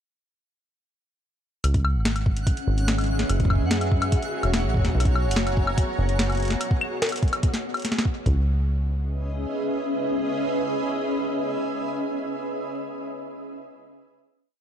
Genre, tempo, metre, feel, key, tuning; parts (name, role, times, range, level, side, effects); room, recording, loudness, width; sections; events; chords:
IDM; 145 BPM; 4/4; straight; C# dorian; A4 = 440 Hz
granular cloud pad; sustained chords; 2.5-12.3 s; B3 to A#5; -28 LUFS; equal; built-in reverb
deep acid bass; bass; 1.6-9.5 s; E1 to F#2; -23 LUFS; equal
booming analog drum machine; drums; 1.6-8.3 s; hi-hat, snare drum, woodblock; -28 LUFS; left 1 dB; digital delay
twinkling granular texture; texture; 2.0-6.6 s; F#5; -37 LUFS; right 3 dB; built-in reverb
electronic kick drum; drums; 1.7-8.3 s; -22 LUFS; equal; overdrive
light reverb; dark, warm production; -22 LUFS; side -9 dB against mid
1.6-8.3 groove; 8.3-11.6 final chord
1.6 C#m7; 3.3 F#7; 5.0 B69; 6.6 N.C.; 8.3 C#m7